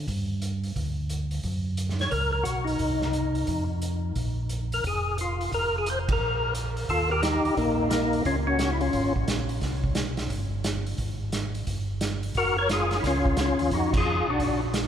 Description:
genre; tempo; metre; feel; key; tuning
soul jazz organ trio; 176 BPM; 4/4; swing 65% on 8ths; Bb mixolydian, Eb mixolydian from 6.9 s; A4 = 440 Hz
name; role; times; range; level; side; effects
mellow tonewheel organ; bass; 0.0-14.9 s; F1 to G2; -29 LUFS; equal; chorus vibrato, slow rotary speaker
vintage drum kit; drums; 0.1-14.8 s; crash cymbal, hi-hat, kick drum, ride cymbal, snare drum; -31 LUFS; right 2 dB; none
percussive tonewheel organ; melody; 2.0-9.1, 12.4-14.6 s; Bb3 to Db5; -26 LUFS; left 2 dB; slow rotary speaker, overdrive, chorus vibrato
room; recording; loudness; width
moderate cathedral reverb, RT60 4.9 s; recorded in a church or concert hall; -24 LUFS; side -9 dB against mid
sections
0.0-6.9 A section; 6.9-14.9 B section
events
band accent 6.0, 13.9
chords
0.1 G5; 1.4 Gb5; 2.8 Cm; 3.5 N.C.; 4.2 Bb5; 5.5 Fmadd11; 6.2 N.C.; 6.9 Ebadd9; 8.3 Db; 9.6 C5; 11.0 N.C.; 12.3 Gbmaj7; 13.7 Fm7

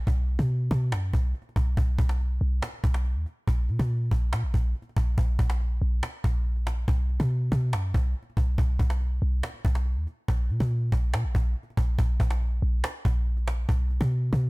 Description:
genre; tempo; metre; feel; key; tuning
hip hop, trap; 141 BPM; 4/4; half-time; unclear; A4 = 444 Hz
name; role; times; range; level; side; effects
clean 808-style bass; bass; 0.0-14.5 s; Bb1 to B2; -24 LUFS; equal; none
cajon; drums; 0.1-14.4 s; none; -31 LUFS; equal; none
room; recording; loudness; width
little or no reverb; none; -24 LUFS; side -25 dB against mid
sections
0.0-10.3 A section; 10.3-14.5 B section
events
none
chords
none

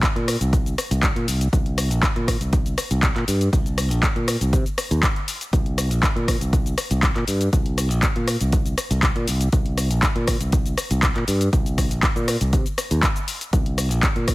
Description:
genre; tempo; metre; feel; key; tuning
filtered disco house; 120 BPM; 4/4; straight; unclear; A4 = 439 Hz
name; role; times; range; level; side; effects
electronic kick drum; drums; 0.0-14.3 s; none; -21 LUFS; equal; none
punchy analog drum machine; drums; 0.0-14.3 s; handclaps, hi-hat, rim click, shaker; -24 LUFS; left 1 dB; overdrive, sidechain pumping on hats, sidechain pumping on cymbals, sidechain pumping on perc
modern bright fingered electric bass; bass; 0.2-14.3 s; Bb1 to C3; -22 LUFS; equal; tube saturation, sidechain pumping, low-pass filter
room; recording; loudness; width
digital ambience; heavily compressed radio sound, multiband compression; -18 LUFS; side -20 dB against mid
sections
0.0-14.3 A section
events
none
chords
none

